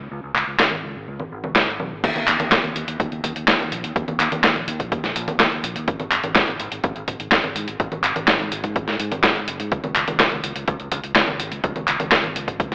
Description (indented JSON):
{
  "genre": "italo disco",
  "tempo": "125 BPM",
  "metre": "4/4",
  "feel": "straight",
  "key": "unclear",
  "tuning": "A4 = 441 Hz",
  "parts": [
    { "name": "fingered electric bass", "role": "bass", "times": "0.0-12.7 s", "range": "Gb1 to Ab2", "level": "-29 LUFS", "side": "equal", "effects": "tape echo" },
    { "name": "dusty soul sampler-style drum kit", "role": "drums", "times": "0.4-12.7 s", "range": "congas, crash cymbal, handclaps, hi-hat, snare drum", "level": "-19 LUFS", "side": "equal", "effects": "overdrive, small room reverb" },
    { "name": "electronic kick drum", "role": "drums", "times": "2.0-12.7 s", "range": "none", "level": "-26 LUFS", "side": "equal", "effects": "overdrive, small room reverb" }
  ],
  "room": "light reverb",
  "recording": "dry, gritty hardware recording, AM radio sound",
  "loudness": "-18 LUFS",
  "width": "side -29 dB against mid",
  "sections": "0.0-2.0 A section; 2.0-12.7 B section",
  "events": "none",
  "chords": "none"
}